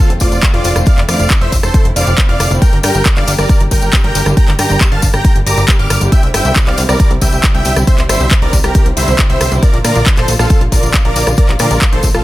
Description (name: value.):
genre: uplifting trance.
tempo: 137 BPM.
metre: 4/4.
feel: straight.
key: F major.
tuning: A4 = 439 Hz.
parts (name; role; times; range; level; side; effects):
big supersaw lead; melody; 0.0-12.2 s; F4 to F6; -18 LUFS; equal; sidechain pumping, dub echo.
dark studio string section; sustained chords; 0.0-12.2 s; D3 to G4; -21 LUFS; right 1 dB; sidechain pumping.
plucky analog bass; bass; 0.1-12.2 s; F1 to Bb2; -16 LUFS; equal; sidechain pumping.
house drum kit; drums; 0.1-12.2 s; handclaps, hi-hat, rim click; -18 LUFS; left 1 dB; none.
electronic kick drum; drums; 0.2-12.1 s; none; -11 LUFS; equal; none.
tambourine; percussion; 0.2-12.2 s; none; -24 LUFS; left 3 dB; none.
room: digital ambience.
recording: none.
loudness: -9 LUFS.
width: side -16 dB against mid.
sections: 0.0-12.2 A section.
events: none.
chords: 0.0 F6; 2.6 Gm; 6.1 Cadd9; 9.6 Bb.